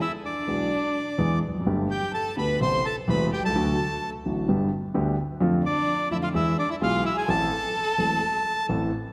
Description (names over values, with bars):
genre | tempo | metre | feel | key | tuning
tango | 128 BPM | 4/4 | rubato | A minor | A4 = 441 Hz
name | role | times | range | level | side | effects
bandoneon | melody | 0.0-8.7 s | D5 to C6 | -30 LUFS | equal | none
warm violin | second line | 0.0-8.7 s | D4 to C5 | -32 LUFS | equal | none
warm concert grand piano | accompaniment | 0.5-8.9 s | E1 to A4 | -28 LUFS | equal | none
room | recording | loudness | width
wet concert hall reverb, RT60 2.2 s | none | -25 LUFS | mono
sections
0.0-9.1 A section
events
none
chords
0.0 E; 1.7 Gadd9; 2.6 Amadd9; 3.5 D; 4.5 G; 5.4 Dm7/F; 6.3 E; 7.3 Am